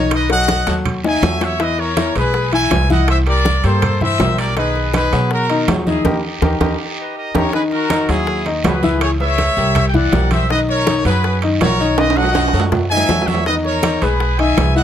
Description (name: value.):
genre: latin, salsa.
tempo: 162 BPM.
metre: 4/4.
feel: straight.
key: unclear.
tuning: A4 = 440 Hz.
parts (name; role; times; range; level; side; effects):
bright trumpet section; melody; 0.0-14.8 s; D#4 to G#5; -19 LUFS; left 1 dB; none.
warm baby grand piano; accompaniment; 0.0-14.8 s; D#3 to E5; -20 LUFS; left 3 dB; none.
upright bass; bass; 0.0-14.8 s; B1 to B2; -19 LUFS; right 1 dB; none.
bongos; percussion; 0.1-14.8 s; none; -25 LUFS; left 6 dB; none.
congas; percussion; 0.1-14.8 s; none; -23 LUFS; right 1 dB; none.
guiro; percussion; 0.1-14.8 s; none; -32 LUFS; right 5 dB; none.
timbales; percussion; 0.1-14.8 s; none; -24 LUFS; right 7 dB; none.
room: light reverb.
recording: close, detailed microphones.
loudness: -14 LUFS.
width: side -10 dB against mid.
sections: 0.0-7.5 A section; 7.5-14.8 A section.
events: drum fill 0.1-1.6, 6.4-7.5, 12.0-13.5; band accent 6.0-7.5.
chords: 0.1 B13; 1.6 Emaj7; 3.1 C13; 4.6 B6; 6.0 D#; 7.5 G#m9; 9.0 C#m7; 9.8 C9; 10.5 Bmaj9; 12.0 B13; 13.5 Emaj7.